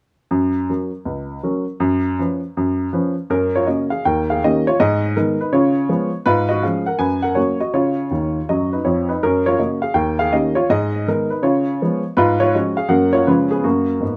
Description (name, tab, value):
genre	jazz, stride piano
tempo	162 BPM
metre	4/4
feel	swing 64% on 8ths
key	F# major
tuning	A4 = 440 Hz
part	warm upright piano	solo	0.3-14.2 s	C#2 to G#5	-18 LUFS	equal	none
room	light reverb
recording	close, detailed microphones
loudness	-19 LUFS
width	mono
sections	0.3-3.3 A section; 3.3-14.2 B section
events	upright piano fill 8.1-9.2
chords	0.3 F#; 1.8 C#7/F#; 3.3 F#; 4.0 D#7; 4.8 G#m; 5.5 C#7; 6.3 C#/G#; 7.0 F#; 7.7 C#; 9.2 F#; 10.0 D#7; 10.7 G#m; 11.4 C#7; 12.2 C#/G#; 12.9 F#; 13.3 C#7; 13.6 F#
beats	| 0.32 0.69 1.06 1.43 | 1.80 2.18 2.55 2.92 | 3.29 3.66 4.03 4.40 | 4.77 5.14 5.51 5.88 | 6.26 6.63 7.00 7.37 | 7.74 8.11 8.48 8.85 | 9.21 9.59 9.95 10.32 | 10.69 11.06 11.43 11.80 | 12.17 12.54 12.91 13.28 | 13.65 14.02